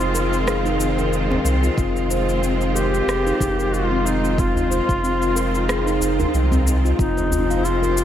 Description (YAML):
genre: organic downtempo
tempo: 92 BPM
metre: 4/4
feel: swing 55% on 16ths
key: F minor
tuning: A4 = 440 Hz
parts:
  - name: warm duduk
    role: melody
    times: 0.0-8.0 s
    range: Eb4 to G4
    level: -24 LUFS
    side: left 1 dB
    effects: analog delay
  - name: rich studio string section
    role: sustained chords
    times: 0.0-8.0 s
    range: Eb3 to C5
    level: -25 LUFS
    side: equal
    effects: sidechain pumping
  - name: steel tongue drum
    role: arpeggios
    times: 0.0-8.0 s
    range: C4 to F5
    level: -24 LUFS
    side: left 2 dB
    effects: analog delay
  - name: warm sub bass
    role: bass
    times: 0.0-8.0 s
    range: F1 to C2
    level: -23 LUFS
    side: equal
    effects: sidechain pumping
  - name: electronic cabasa and rim click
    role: drums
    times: 0.0-8.0 s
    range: none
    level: -29 LUFS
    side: left 1 dB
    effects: none
  - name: drifting glass-harmonics texture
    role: texture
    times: 0.0-7.0 s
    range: Eb4 to F4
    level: -32 LUFS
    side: equal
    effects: none
  - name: djembe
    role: percussion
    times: 1.0-7.9 s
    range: none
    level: -29 LUFS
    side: equal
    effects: none
  - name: electronic kick drum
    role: drums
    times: 1.8-7.1 s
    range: none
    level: -23 LUFS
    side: equal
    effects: none
room: moderate lush hall reverb, RT60 2.0 s, small room reverb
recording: dreamy mix soaked in reverb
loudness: -17 LUFS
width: side -10 dB against mid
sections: 0.0-7.0 A section; 7.0-8.0 B section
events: kick drops out 5.7-7.0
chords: 0.0 Fm7; 7.0 Fmadd9